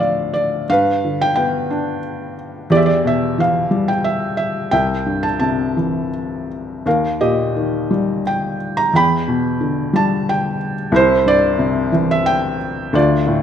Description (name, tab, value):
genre	classical, lyrical solo piano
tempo	82-92 BPM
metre	3/4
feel	rubato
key	unclear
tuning	A4 = 440 Hz
part	felt-muted upright piano	solo	0.0-13.4 s	C2 to B5	-15 LUFS	equal	none
room	moderate recital hall reverb, RT60 1.4 s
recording	recorded in a church or concert hall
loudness	-15 LUFS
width	side -9 dB against mid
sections	0.0-13.4 A section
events	none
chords	0.0 Dm; 0.7 G; 2.7 Em; 4.7 C; 6.9 Eb; 8.9 Em7; 10.9 Cadd9